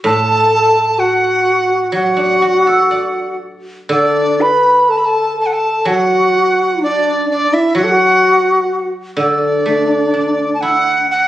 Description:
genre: chinese traditional, Chinese chamber ensemble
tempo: 63 BPM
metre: 2/4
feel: rubato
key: D gong mode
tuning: A4 = 439 Hz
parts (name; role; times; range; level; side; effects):
- guzheng; accompaniment; 0.0-11.3 s; A2 to D5; -18 LUFS; equal; none
- large dizi; melody; 0.1-11.3 s; D5 to B5; -14 LUFS; right 1 dB; none
- low xiao; second line; 0.1-11.1 s; D4 to B4; -16 LUFS; left 1 dB; none
room: moderate recital hall reverb, RT60 1.5 s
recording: recorded on a phone in the room, studio ambience, compression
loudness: -11 LUFS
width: side -13 dB against mid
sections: 0.0-11.3 A section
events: none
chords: none

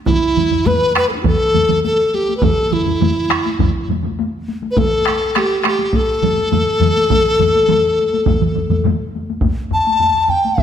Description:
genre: japanese traditional, taiko drum ensemble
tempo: 103 BPM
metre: 4/4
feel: straight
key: unclear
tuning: A4 = 440 Hz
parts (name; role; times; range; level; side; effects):
- mellow hollow large dizi; melody; 0.1-10.6 s; D4 to A5; -15 LUFS; left 1 dB; none
- solo taiko drums; percussion; 0.1-10.6 s; none; -21 LUFS; right 2 dB; none
- taiko ensemble; percussion; 0.1-10.6 s; none; -25 LUFS; left 6 dB; none
- taiko ensemble; percussion; 0.1-10.6 s; none; -22 LUFS; left 4 dB; none
- taiko ensemble; percussion; 0.1-9.0 s; none; -21 LUFS; right 5 dB; none
room: wet recital hall reverb, RT60 1.6 s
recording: none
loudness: -13 LUFS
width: side -9 dB against mid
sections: 0.0-9.4 A section; 9.4-10.6 B section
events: none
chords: none

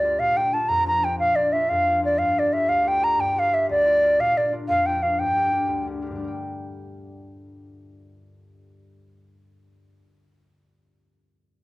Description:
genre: celtic folk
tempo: 120 BPM (dotted quarters)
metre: 6/8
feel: straight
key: G minor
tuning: A4 = 440 Hz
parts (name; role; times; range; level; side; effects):
- bright wooden flute; melody; 0.0-5.9 s; D5 to Bb5; -19 LUFS; equal; cassette tape
- concert harp; accompaniment; 0.0-10.0 s; D2 to G5; -32 LUFS; left 2 dB; cassette tape
room: moderate spring reverb, RT60 1.2 s, studio reverb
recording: home recording on cassette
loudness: -19 LUFS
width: side -20 dB against mid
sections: 0.0-6.2 A section; 6.2-8.2 B section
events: none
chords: 0.2 Bb; 2.2 Gm7; 4.2 Bb; 5.2 Gm

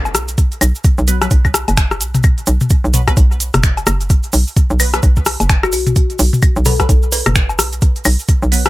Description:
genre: minimal techno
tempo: 129 BPM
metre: 4/4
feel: swing 60% on 16ths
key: unclear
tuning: A4 = 440 Hz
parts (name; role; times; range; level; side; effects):
- hollow knocking FM bass; bass; 0.0-8.7 s; F#1 to B1; -16 LUFS; equal; sidechain pumping
- techno drum kit; drums; 0.1-8.7 s; finger snaps, hi-hat; -21 LUFS; right 2 dB; none
- booming analog drum machine; percussion; 0.1-8.7 s; claves, rim click, toms, woodblock; -17 LUFS; left 2 dB; dub echo
- tube shaker; percussion; 0.1-8.7 s; none; -23 LUFS; right 3 dB; none
- electronic kick drum; drums; 0.4-8.4 s; none; -12 LUFS; equal; none
- filtered dub chord stab; stabs; 1.1-8.7 s; F#3 to B4; -25 LUFS; right 2 dB; phaser, wide subtle chorus, dub echo
- kalimba; melody; 5.6-7.5 s; F#4 to B4; -24 LUFS; left 4 dB; dub echo
room: little or no reverb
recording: none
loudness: -11 LUFS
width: side -18 dB against mid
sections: 0.0-8.7 A section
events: none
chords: 0.0 B5

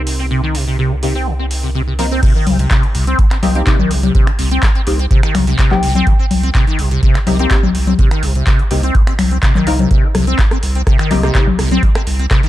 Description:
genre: acid house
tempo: 125 BPM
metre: 4/4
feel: straight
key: C minor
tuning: A4 = 442 Hz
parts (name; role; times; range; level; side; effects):
- lush unison pad; sustained chords; 0.0-2.2 s; C3 to Bb4; -31 LUFS; right 2 dB; chorus, sidechain pumping
- saturated sub bass; bass; 0.0-12.3 s; Bb1 to C2; -17 LUFS; equal; sidechain pumping
- booming analog drum machine; drums; 0.1-12.5 s; congas, crash cymbal, finger snaps, handclaps, hi-hat, rim click; -19 LUFS; left 4 dB; studio reverb
- liquid acid bass; riff; 0.2-12.5 s; C3 to C4; -19 LUFS; equal; phaser, tube saturation, ensemble chorus, dub echo
- filtered dub chord stab; stabs; 1.0-11.5 s; Bb3 to Bb4; -23 LUFS; left 2 dB; ensemble chorus, dub echo
- electronic kick drum; drums; 2.2-12.4 s; none; -14 LUFS; equal; studio reverb
- soft synth bell; melody; 5.7-6.1 s; G5; -24 LUFS; left 1 dB; chorus, phaser, dub echo
room: digital ambience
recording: dark, warm production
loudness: -11 LUFS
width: side -14 dB against mid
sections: 0.0-2.2 A section; 2.2-12.5 B section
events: filter sweep on analog synth pad 0.0-2.2; filter sweep on synth stab 0.0-2.2; drop 2.2-12.5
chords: 0.0 Cm7

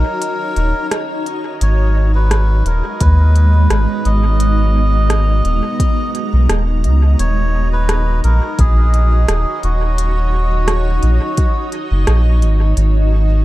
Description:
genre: ambient dub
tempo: 86 BPM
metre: 4/4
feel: swing 54% on 16ths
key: G# minor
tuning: A4 = 440 Hz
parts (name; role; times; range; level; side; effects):
- melodica; melody; 0.0-11.7 s; F#4 to D#5; -23 LUFS; equal; dub echo
- granular cloud pad; sustained chords; 0.0-13.4 s; G#3 to A#5; -23 LUFS; right 1 dB; built-in reverb
- soft dub sub bass; bass; 0.0-13.4 s; D#1 to D#2; -12 LUFS; equal; none
- bubbling stepped-filter texture; texture; 0.0-13.4 s; D#5; -30 LUFS; right 8 dB; chorus, built-in reverb
- organic electronic drum kit; drums; 0.2-12.9 s; hi-hat, rim click; -24 LUFS; right 1 dB; dub echo
- electronic kick drum; drums; 3.0-11.5 s; none; -15 LUFS; equal; overdrive
room: digital ambience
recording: dark, warm production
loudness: -12 LUFS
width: side -16 dB against mid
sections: 0.0-13.4 A section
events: break 0.0-1.6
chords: 0.0 D#m7; 1.6 G#m7; 7.2 D#m7; 12.8 G#7(no3)

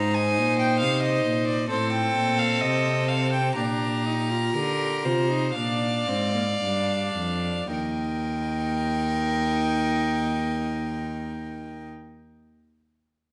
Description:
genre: classical, baroque-style fugue for string quartet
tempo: 53-68 BPM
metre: 4/4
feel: straight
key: Eb major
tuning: A4 = 441 Hz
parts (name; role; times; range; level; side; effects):
- warm violin; melody; 0.0-11.9 s; C5 to Bb5; -31 LUFS; equal; none
- rich violin; second line; 0.0-11.9 s; G4 to D5; -32 LUFS; equal; none
- warm viola; accompaniment; 0.0-11.9 s; Bb3 to G4; -32 LUFS; equal; none
- rich cello; bass; 0.0-11.9 s; Eb2 to D3; -30 LUFS; equal; none
room: moderate recital hall reverb, RT60 1.5 s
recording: nothing above 10.9 kHz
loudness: -25 LUFS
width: mono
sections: 0.0-7.7 A section; 7.7-12.2 B section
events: slowing down 0.0-7.7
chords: 0.0 Fm7/Ab (rootless); 1.7 F7/A; 3.6 Eb/Bb; 5.6 Bb7; 7.7 Eb

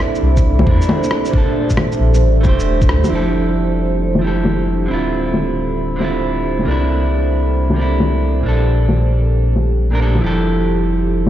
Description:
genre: future garage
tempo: 135 BPM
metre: 4/4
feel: swing 67% on 16ths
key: unclear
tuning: A4 = 439 Hz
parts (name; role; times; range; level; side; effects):
- clean electric guitar; accompaniment; 0.0-11.3 s; Bb2 to C5; -19 LUFS; right 2 dB; vintage 12-bit sampler grit, sidechain pumping, tape echo
- deep dark ambient pad; sustained chords; 0.0-11.3 s; D4 to E5; -21 LUFS; right 2 dB; chorus, built-in reverb, sidechain pumping
- electronic rim click, shaker, bongos and cabasa; drums; 0.0-11.3 s; none; -20 LUFS; left 2 dB; low-pass filter on perc, low-pass filter on snare
- warm sub bass; bass; 0.2-11.3 s; D1 to E2; -17 LUFS; equal; sidechain pumping
- electronic kick drum; drums; 0.4-2.9 s; none; -15 LUFS; equal; none
room: light reverb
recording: played on a big sound system in a bare room, large studio reverb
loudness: -13 LUFS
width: side -12 dB against mid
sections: 0.0-3.1 A section; 3.1-11.3 B section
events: band accent 2.9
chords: 0.0 C9; 1.3 Bbmaj7; 2.2 Am7; 3.1 Fmaj9; 4.9 Dm9; 6.7 C9; 8.5 Bbmaj7; 10.2 Fmaj9

